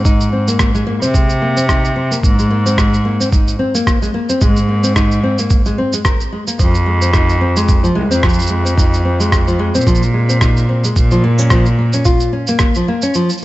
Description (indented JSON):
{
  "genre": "folktronica",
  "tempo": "110 BPM",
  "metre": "4/4",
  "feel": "swing 56% on 16ths",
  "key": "Ab major",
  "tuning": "A4 = 440 Hz",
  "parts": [
    { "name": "nylon-string guitar", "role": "arpeggios", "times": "0.0-13.4 s", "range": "F3 to Bb4", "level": "-18 LUFS", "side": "left 1 dB", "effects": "digital delay" },
    { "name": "rich cello", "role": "bass", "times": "0.0-12.3 s", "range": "C2 to C3", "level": "-15 LUFS", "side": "equal", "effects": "none" },
    { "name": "electronic cabasa and rim click", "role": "drums", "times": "0.1-13.4 s", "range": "none", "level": "-21 LUFS", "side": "right 1 dB", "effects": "overdrive" },
    { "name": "electronic kick drum", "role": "drums", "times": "0.1-12.7 s", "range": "none", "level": "-14 LUFS", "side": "equal", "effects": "overdrive" }
  ],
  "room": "little or no reverb",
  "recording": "nothing above 7.9 kHz",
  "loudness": "-11 LUFS",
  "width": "side -17 dB against mid",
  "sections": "0.0-13.4 A section",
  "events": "none",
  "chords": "0.0 Abadd9; 6.6 Fm7; 11.0 Bbm",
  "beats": "| 0.05 0.59 1.14 1.69 | 2.23 2.78 3.32 3.87 | 4.41 4.96 5.50 6.05 | 6.59 7.14 7.68 8.23 | 8.78 9.32 9.87 10.41 | 10.96 11.50 12.05 12.60 | 13.14"
}